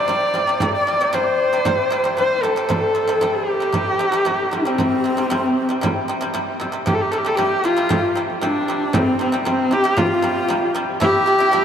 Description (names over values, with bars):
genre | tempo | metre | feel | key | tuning
mongolian traditional, Mongolian folk | 115 BPM | 4/4 | straight | C zhi mode | A4 = 438 Hz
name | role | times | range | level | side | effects
clear horsehead fiddle | melody | 0.0-11.6 s | C4 to D5 | -19 LUFS | equal | none
breathy bright low xiao | second line | 0.0-11.6 s | C4 to D5 | -24 LUFS | left 2 dB | none
pipa | arpeggios | 0.0-11.6 s | C3 to E4 | -24 LUFS | equal | none
frame drum | percussion | 0.1-11.6 s | none | -26 LUFS | right 2 dB | none
room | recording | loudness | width
wet huge ambient reverb, RT60 7.3 s | in a vast, echoing space | -17 LUFS | side -8 dB against mid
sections
0.0-6.9 A section; 6.9-11.6 B section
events
none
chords
0.0 C5; 11.0 A5